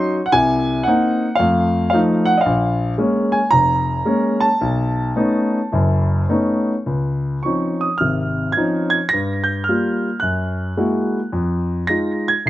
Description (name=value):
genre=solo jazz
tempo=102-113 BPM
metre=4/4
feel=swing 69% on 8ths, rubato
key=Db major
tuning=A4 = 440 Hz
part: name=warm grand piano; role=solo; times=0.0-12.5 s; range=F1 to Bb6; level=-16 LUFS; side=equal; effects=none
room=little or no reverb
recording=recorded outdoors, with no room sound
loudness=-16 LUFS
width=side -14 dB against mid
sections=0.0-6.9 A section; 6.9-12.5 B section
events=none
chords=0.3 Cm7b5; 1.4 F7; 2.5 Bbm7; 4.6 Cb9; 6.9 Dbmaj9; 9.1 Gm7; 10.2 Gb9; 11.3 Fm7